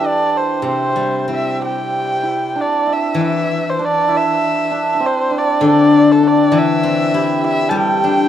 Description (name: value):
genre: chinese traditional, Chinese chamber ensemble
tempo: 98 BPM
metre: 4/4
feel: rubato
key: C gong mode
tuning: A4 = 440 Hz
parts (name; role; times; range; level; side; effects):
- warm erhu; melody; 0.0-8.3 s; A4 to A5; -19 LUFS; left 1 dB; none
- hammered dulcimer; second line; 0.0-8.3 s; A3 to A4; -18 LUFS; right 5 dB; none
- steel-string zither; accompaniment; 0.0-8.3 s; C3 to E4; -17 LUFS; left 5 dB; none
room: light reverb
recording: close, detailed microphones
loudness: -13 LUFS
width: side -10 dB against mid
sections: 0.0-1.9 A section; 1.9-8.3 B section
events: none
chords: none